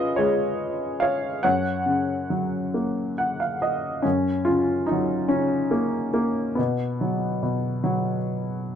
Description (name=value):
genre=classical, lyrical solo piano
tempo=48 BPM (dotted quarters)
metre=6/8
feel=rubato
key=F# major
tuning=A4 = 440 Hz
part: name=clear upright piano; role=solo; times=0.0-8.8 s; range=F#2 to F#5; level=-22 LUFS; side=equal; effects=none
room=light reverb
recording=dark, warm production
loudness=-22 LUFS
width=side -8 dB against mid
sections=0.0-4.0 A section; 4.0-8.8 A section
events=upright piano fill 2.7-4.0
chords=0.0 C#7; 1.4 F#; 6.6 B5